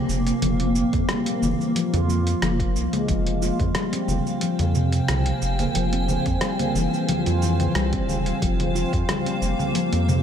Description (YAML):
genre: organic downtempo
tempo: 90 BPM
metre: 4/4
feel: swing 53% on 16ths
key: F minor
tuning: A4 = 440 Hz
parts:
  - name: granular cloud pad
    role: sustained chords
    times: 0.0-10.2 s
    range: Bb3 to Ab5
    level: -27 LUFS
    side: equal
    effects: built-in reverb, sidechain pumping
  - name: handpan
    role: arpeggios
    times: 0.0-10.2 s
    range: C3 to F4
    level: -24 LUFS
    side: left 1 dB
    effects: digital delay
  - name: round analog bass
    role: bass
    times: 0.1-10.2 s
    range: F1 to F2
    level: -24 LUFS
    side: equal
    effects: sidechain pumping
  - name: dusty soul sampler-style drum kit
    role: drums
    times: 0.1-10.2 s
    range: cabasa, congas, hi-hat, rim click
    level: -28 LUFS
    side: right 1 dB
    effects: overdrive
  - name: electronic kick drum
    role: drums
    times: 0.9-9.1 s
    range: none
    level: -27 LUFS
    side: equal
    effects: none
room: light reverb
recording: none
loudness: -20 LUFS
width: side -8 dB against mid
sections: 0.0-10.2 A section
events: none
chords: 0.0 Fmadd9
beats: | 0.42 1.09 1.75 2.42 | 3.09 3.75 4.42 5.09 | 5.75 6.42 7.09 7.75 | 8.42 9.09 9.75